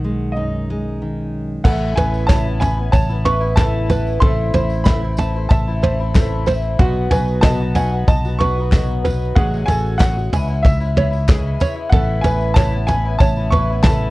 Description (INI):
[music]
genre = indie folk with a building arrangement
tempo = 94 BPM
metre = 4/4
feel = straight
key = unclear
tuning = A4 = 440 Hz
[part]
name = bright upright piano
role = melody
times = 0.0-14.1 s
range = D#5 to C#6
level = -24 LUFS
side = equal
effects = none
[part]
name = fingerpicked steel-string acoustic guitar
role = accompaniment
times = 0.0-1.6 s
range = F#2 to D#4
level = -24 LUFS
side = equal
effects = none
[part]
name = fingered electric bass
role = bass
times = 0.0-14.1 s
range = A1 to C#2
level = -20 LUFS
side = equal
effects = none
[part]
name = picked twelve-string acoustic guitar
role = accompaniment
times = 1.6-14.1 s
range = A2 to F#4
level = -26 LUFS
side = left 4 dB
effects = none
[part]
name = open-back banjo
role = arpeggios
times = 1.6-14.1 s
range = F#4 to B5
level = -25 LUFS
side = right 5 dB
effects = none
[part]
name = soft brush drum kit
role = drums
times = 1.6-14.0 s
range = crash cymbal, kick drum, snare drum, toms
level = -16 LUFS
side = equal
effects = vintage 12-bit sampler grit
[part]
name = tambourine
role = percussion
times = 2.0-14.0 s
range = none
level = -43 LUFS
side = right 3 dB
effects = none
[part]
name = group handclap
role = percussion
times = 2.3-14.0 s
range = none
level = -33 LUFS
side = left 5 dB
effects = none
[sound]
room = little or no reverb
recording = worn, warbling old tape, cassette tape, warbly pitch drift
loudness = -15 LUFS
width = side -19 dB against mid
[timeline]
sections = 0.0-1.7 A section; 1.7-14.1 B section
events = none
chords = 0.0 B6; 1.7 Aadd9; 4.2 Am; 6.8 B; 9.4 F#madd9/A; 10.3 C#m; 11.9 Aadd9